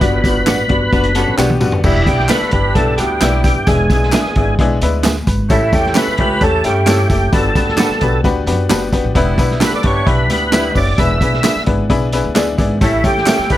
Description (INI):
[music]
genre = uptempo 1960s-style soul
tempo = 131 BPM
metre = 4/4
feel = straight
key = E dorian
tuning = A4 = 440 Hz
[part]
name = overdriven tonewheel organ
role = melody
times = 0.0-13.6 s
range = E4 to E5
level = -18 LUFS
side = right 1 dB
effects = chorus vibrato, slow rotary speaker, slapback echo
[part]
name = vibraphone with soft mallets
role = second line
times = 0.0-13.6 s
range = B3 to E6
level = -25 LUFS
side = right 4 dB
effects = none
[part]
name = bright upright piano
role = accompaniment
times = 0.0-13.6 s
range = G3 to B5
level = -19 LUFS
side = left 4 dB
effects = none
[part]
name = upright bass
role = bass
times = 0.0-13.6 s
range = E1 to G2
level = -18 LUFS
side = equal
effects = none
[part]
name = vintage drum kit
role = drums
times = 0.0-13.6 s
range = crash cymbal, hi-hat, kick drum, snare drum, toms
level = -17 LUFS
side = equal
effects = none
[part]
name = tambourine and handclaps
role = percussion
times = 0.0-13.6 s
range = none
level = -26 LUFS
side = left 1 dB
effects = none
[part]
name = semi-hollow electric guitar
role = stabs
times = 0.5-13.4 s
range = C#4 to F#5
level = -19 LUFS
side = right 6 dB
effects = none
[part]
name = edgy saxophone section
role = second line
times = 0.7-13.6 s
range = G3 to A4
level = -24 LUFS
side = right 2 dB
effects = none
[part]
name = electric guitar at the edge of break-up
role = riff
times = 0.9-1.8 s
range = B3 to B4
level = -23 LUFS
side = left 6 dB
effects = none
[sound]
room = light reverb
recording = none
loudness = -12 LUFS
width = side -13 dB against mid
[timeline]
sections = 0.0-1.8 A section; 1.8-13.6 B section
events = band accent 0.0-1.8; drum fill 1.4-1.8; upright piano fill 8.2-9.2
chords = 0.0 Gmaj7; 1.8 Em7; 3.7 E7; 5.5 A7; 7.3 Gmaj7; 9.2 Em7; 11.0 E7; 12.8 A7